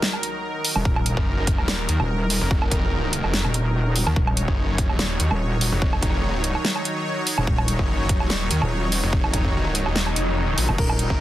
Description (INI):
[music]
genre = heavy wobble dubstep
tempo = 145 BPM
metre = 4/4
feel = swing 54% on 16ths, half-time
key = Eb minor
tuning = A4 = 441 Hz
[part]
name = supersaw pad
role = sustained chords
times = 0.0-11.2 s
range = Eb3 to Db5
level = -27 LUFS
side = equal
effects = sidechain pumping
[part]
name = dubstep drum kit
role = drums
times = 0.0-11.1 s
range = crash cymbal, hi-hat, snare drum, woodblock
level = -25 LUFS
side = right 1 dB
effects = none
[part]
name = wobble bass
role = bass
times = 0.8-11.1 s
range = Eb1 to F1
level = -23 LUFS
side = equal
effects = chorus, overdrive
[part]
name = electronic kick drum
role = drums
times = 0.9-11.2 s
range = none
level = -23 LUFS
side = equal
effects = overdrive
[part]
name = snarling distorted saw bass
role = bass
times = 1.2-11.2 s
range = Eb1 to Eb2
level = -24 LUFS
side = equal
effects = distortion, overdrive
[part]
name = swell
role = sound effects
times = 10.1-10.8 s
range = none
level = -33 LUFS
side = left 6 dB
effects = none
[part]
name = warm grand piano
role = melody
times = 10.8-11.2 s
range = Bb4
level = -30 LUFS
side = right 1 dB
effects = none
[sound]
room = little or no reverb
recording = dense, heavily limited modern master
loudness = -20 LUFS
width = side -14 dB against mid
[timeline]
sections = 0.0-11.2 A section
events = swell 10.1-10.8; kick drops out 10.4-10.8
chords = 0.0 Ebm